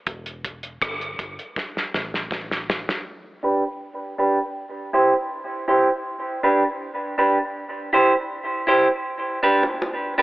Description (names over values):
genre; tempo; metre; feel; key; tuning
dub reggae; 80 BPM; 4/4; straight; unclear; A4 = 438 Hz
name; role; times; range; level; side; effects
vintage muted fingered electric bass; bass; 0.1-2.8 s; E1 to A1; -40 LUFS; equal; none
cloth-damped thuddy drum kit; drums; 0.1-3.1 s; hi-hat, kick drum, rim click, snare drum; -25 LUFS; equal; none
clean electric guitar; accompaniment; 3.4-10.2 s; D4 to C5; -19 LUFS; right 1 dB; low-pass filter, dub echo
bongos; percussion; 9.6-10.0 s; none; -28 LUFS; equal; dub echo
room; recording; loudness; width
moderate plate reverb, RT60 2.2 s; echo-heavy mix, telephone sound; -20 LUFS; side -18 dB against mid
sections
0.0-3.1 A section; 3.1-10.2 B section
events
break 0.0-3.1; drum fill 1.6-3.1; part muted 3.1-9.1; filter sweep on clean electric guitar 3.1-10.2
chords
0.1 Em; 1.6 N.C.; 3.1 G/D; 4.6 Em; 6.1 G/D; 7.6 Em; 9.1 G/D